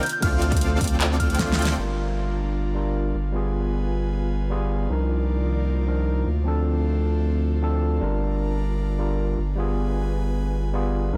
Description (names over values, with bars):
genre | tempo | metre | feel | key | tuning
future bass | 154 BPM | 4/4 | half-time | G minor | A4 = 440 Hz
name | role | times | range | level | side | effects
soft synth bell | melody | 0.0-1.6 s | F6 to G6 | -33 LUFS | equal | chorus, sidechain pumping, dub echo
overdriven tine electric piano | accompaniment | 0.0-11.2 s | D3 to Bb4 | -31 LUFS | equal | sidechain pumping, delay
airy breathy pad | sustained chords | 0.0-11.2 s | C3 to Ab5 | -37 LUFS | equal | chorus, sidechain pumping
pop drum kit | drums | 0.0-1.7 s | handclaps, hi-hat, ride cymbal, snare drum | -31 LUFS | equal | low-pass filter on hats, studio reverb, low-pass filter on cymbals, low-pass filter on snare
dense compressed supersaw | riff | 0.2-1.8 s | C4 to G5 | -33 LUFS | equal | sidechain pumping, low-pass filter, delay
saturated sub bass | bass | 0.2-11.2 s | G1 to D2 | -26 LUFS | equal | sidechain pumping
electronic kick drum | drums | 0.2-1.5 s | none | -27 LUFS | equal | studio reverb
room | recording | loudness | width
little or no reverb | none | -24 LUFS | mono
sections
0.0-1.8 A section; 1.8-11.2 B section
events
drop 0.0-1.8; drum fill 1.4-1.8; band accent 1.7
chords
0.0 Dm7; 1.8 Gm7; 3.1 G7b9; 4.9 Cm11; 6.3 Dm7; 8.0 Gm7; 9.4 G7b9